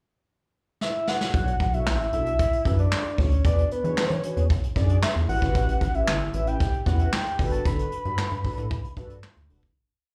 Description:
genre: early-eighties boogie funk.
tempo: 114 BPM.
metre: 4/4.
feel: straight.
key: B minor.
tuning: A4 = 440 Hz.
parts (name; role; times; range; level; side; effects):
soft octave-layered synth lead; melody; 0.8-9.2 s; B4 to B5; -31 LUFS; equal; chorus, phaser, slapback echo, plate reverb.
vintage brush drum kit; drums; 0.8-9.8 s; handclaps, hi-hat, kick drum, snare drum; -29 LUFS; equal; none.
mellow synth brass; accompaniment; 1.3-9.6 s; C#4 to E5; -37 LUFS; equal; chorus, plate reverb, slapback echo.
rubbery square bass; bass; 1.3-9.7 s; E1 to E3; -27 LUFS; equal; none.
room: light reverb.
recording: live gig heard through the venue's PA, club reverb.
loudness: -24 LUFS.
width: mono.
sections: 0.0-1.3 pickup bar; 1.3-9.8 verse.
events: drum fill 0.8-1.3; fade-out 7.7-9.8.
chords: 0.0 N.C.; 1.3 Bm9; 3.4 E7; 5.3 A7; 7.4 Gmaj7.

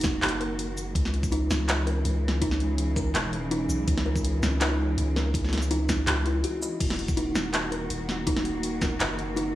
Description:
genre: half-time drum and bass.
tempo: 164 BPM.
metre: 4/4.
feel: half-time.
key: unclear.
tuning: A4 = 441 Hz.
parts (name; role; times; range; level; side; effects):
muted chamber cello section; sustained chords; 0.0-9.6 s; Db3 to Gb4; -34 LUFS; equal; sidechain pumping.
kalimba; arpeggios; 0.0-9.6 s; Eb4 to Eb5; -31 LUFS; equal; tape echo.
long sustained 808-style bass; bass; 0.0-9.5 s; Eb1 to Db2; -28 LUFS; equal; tube saturation.
drum and bass drum kit; drums; 0.0-9.4 s; crash cymbal, handclaps, hi-hat, shaker, snare drum; -29 LUFS; equal; none.
electronic kick drum; drums; 0.0-8.9 s; none; -29 LUFS; equal; none.
room: light reverb.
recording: dry, gritty hardware recording, studio reverb.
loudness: -24 LUFS.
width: side -14 dB against mid.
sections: 0.0-9.6 A section.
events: break 6.4-6.8.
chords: 0.0 Ebm; 1.0 Dbm; 6.8 Ebm.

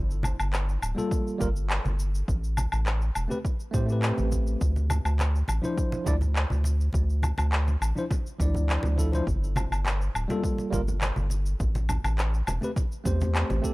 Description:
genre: sunset chillout.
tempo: 103 BPM.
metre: 4/4.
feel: straight.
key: D minor.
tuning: A4 = 439 Hz.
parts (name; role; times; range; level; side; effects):
round analog bass; bass; 0.0-13.6 s; D1 to A2; -25 LUFS; equal; none.
electronic shaker, woodblock and handclaps; drums; 0.1-13.7 s; none; -32 LUFS; equal; none.
congas; percussion; 0.2-13.6 s; none; -34 LUFS; right 1 dB; none.
tine electric piano; accompaniment; 0.9-13.7 s; F3 to D5; -32 LUFS; equal; auto-pan, tape echo.
electronic kick drum; drums; 1.1-13.7 s; none; -28 LUFS; equal; none.
room: digital ambience.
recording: dry, gritty hardware recording.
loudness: -24 LUFS.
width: side -21 dB against mid.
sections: 0.0-13.7 A section.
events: none.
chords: 0.0 Gm9; 2.3 Am9; 4.6 Dmadd9; 9.3 Gm9; 11.6 Am7.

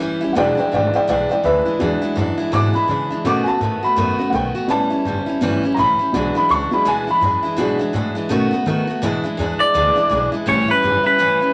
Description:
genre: rock.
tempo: 166 BPM.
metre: 4/4.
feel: swing 60% on 8ths.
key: E mixolydian.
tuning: A4 = 442 Hz.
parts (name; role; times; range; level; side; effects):
picked steel-string acoustic guitar; accompaniment; 0.0-11.5 s; E2 to F#4; -24 LUFS; equal; none.
upright bass; bass; 0.0-11.4 s; E1 to D#3; -27 LUFS; equal; none.
dark upright piano; accompaniment; 0.3-8.6 s; D#3 to D6; -20 LUFS; equal; none.
electric guitar through a small old amp; melody; 9.6-11.5 s; B4 to D5; -17 LUFS; equal; harmonic tremolo.
room: wet club reverb, RT60 0.6 s.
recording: vinyl crackle.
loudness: -18 LUFS.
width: mono.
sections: 0.0-9.0 A section; 9.0-11.5 B section.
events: upright piano solo 0.0-9.0.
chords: 0.4 E7; 3.2 B7; 4.7 A7; 6.1 E7; 8.3 B7; 9.0 E7; 10.5 A7.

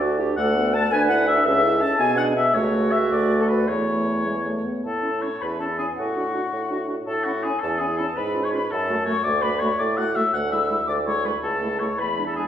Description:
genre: quick classical-period movement for wind quintet.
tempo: 109 BPM (dotted quarters).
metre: 6/8.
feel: rubato.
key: A major.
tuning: A4 = 442 Hz.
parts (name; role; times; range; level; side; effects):
silver concert flute; melody; 0.0-12.4 s; A4 to F#6; -28 LUFS; left 4 dB; none.
warm oboe; second line; 0.0-12.4 s; F#4 to A5; -24 LUFS; left 2 dB; none.
mellow French horn; accompaniment; 0.0-12.5 s; G#3 to F#4; -28 LUFS; equal; none.
warm clarinet; accompaniment; 0.0-12.5 s; D4 to B4; -29 LUFS; right 4 dB; none.
mellow bassoon; bass; 0.0-12.5 s; C#2 to B2; -26 LUFS; right 1 dB; none.
room: wet recital hall reverb, RT60 1.5 s.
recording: heard from further back in the room.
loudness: -20 LUFS.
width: side -10 dB against mid.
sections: 0.0-4.9 A section; 4.9-12.5 B section.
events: none.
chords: 0.4 Bm7/D; 0.9 E5/D; 1.5 A/C#; 2.0 G#dim/B; 2.5 A/C#; 3.1 D6; 3.7 A/E; 4.3 E; 4.9 A; 6.0 D/A; 7.1 A; 8.2 C#7/G#; 8.7 F#m; 9.3 D; 10.3 E7/D; 11.4 A/C#.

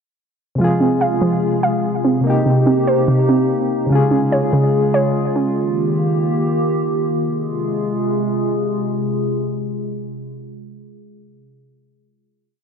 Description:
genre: hip hop, drill.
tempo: 145 BPM.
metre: 4/4.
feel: half-time.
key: F minor.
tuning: A4 = 440 Hz.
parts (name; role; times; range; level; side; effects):
soft electric-piano-like synth keys; accompaniment; 0.6-5.6 s; C3 to Ab4; -20 LUFS; left 2 dB; chorus, tremolo.
warbly tape-like pad; sustained chords; 0.6-11.3 s; C3 to Ab4; -19 LUFS; left 1 dB; chorus, built-in reverb.
warbly dusty pluck; arpeggios; 0.6-5.6 s; C3 to F5; -17 LUFS; right 2 dB; chorus, analog delay.
room: light reverb.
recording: dry, gritty hardware recording, low-pass filter.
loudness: -15 LUFS.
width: side -6 dB against mid.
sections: 0.6-7.2 breakdown; 7.2-10.5 final chord.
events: filter sweep 0.6-7.2.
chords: 0.6 Fm; 2.3 Cm7; 3.9 Db; 5.6 Ebadd9; 7.2 Fm.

